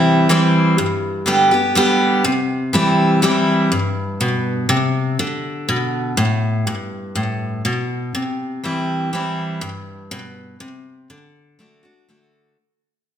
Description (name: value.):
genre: country.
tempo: 122 BPM.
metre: 3/4.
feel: straight.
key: unclear.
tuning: A4 = 440 Hz.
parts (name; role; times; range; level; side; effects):
picked steel-string acoustic guitar; solo; 0.0-12.6 s; G2 to G4; -16 LUFS; equal; slapback echo.
room: wet large studio reverb, RT60 1.4 s.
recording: none.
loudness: -16 LUFS.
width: side -9 dB against mid.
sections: 0.0-6.7 A section; 6.7-12.6 B section.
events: fade-out 6.7-12.6.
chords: 0.0 C; 0.8 G; 2.3 C; 5.2 D5; 6.7 G; 8.1 C; 11.1 D.